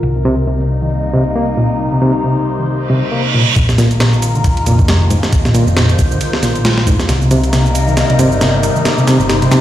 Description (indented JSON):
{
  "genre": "breakbeat, breaks",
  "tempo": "136 BPM",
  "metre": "4/4",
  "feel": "swing 57% on 16ths",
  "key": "C minor",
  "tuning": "A4 = 439 Hz",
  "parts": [
    { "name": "phased analog pad", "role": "sustained chords", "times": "0.0-9.6 s", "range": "C3 to C5", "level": "-17 LUFS", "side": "left 2 dB", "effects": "phaser, chorus, sidechain pumping" },
    { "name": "hollow-body short-scale picked electric bass", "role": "bass", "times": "0.0-9.5 s", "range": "F1 to C2", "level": "-16 LUFS", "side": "equal", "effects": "low-pass filter" },
    { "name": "reed electric piano", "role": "riff", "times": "0.2-9.6 s", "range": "Ab2 to Bb3", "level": "-15 LUFS", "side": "equal", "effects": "overdrive, fast tremolo, low-pass filter, ping-pong delay" },
    { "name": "reverse cymbal and riser", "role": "sound effects", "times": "2.9-9.6 s", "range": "none", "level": "-23 LUFS", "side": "right 4 dB", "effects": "none" },
    { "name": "breakbeat sampler-style drum kit", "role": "drums", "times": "3.6-9.6 s", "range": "kick drum, ride cymbal, snare drum", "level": "-16 LUFS", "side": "equal", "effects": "studio ambience" },
    { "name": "shaker", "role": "drums", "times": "3.6-9.6 s", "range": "none", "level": "-28 LUFS", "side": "right 7 dB", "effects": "studio ambience" }
  ],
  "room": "light reverb, digital ambience",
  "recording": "played on a big sound system in a bare room, large studio reverb",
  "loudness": "-11 LUFS",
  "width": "side -12 dB against mid",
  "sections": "0.0-3.6 A section; 3.6-9.6 B section",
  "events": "filter sweep on reed electric piano 0.0-3.6, 3.6-9.6; filter sweep on analog synth pad 0.0-3.6; reverse cymbal 2.9-3.6; build-up 3.6-9.6; drum fill 7.1-9.6",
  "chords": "0.0 Cm7; 3.6 Bb7sus4; 7.1 Cm7"
}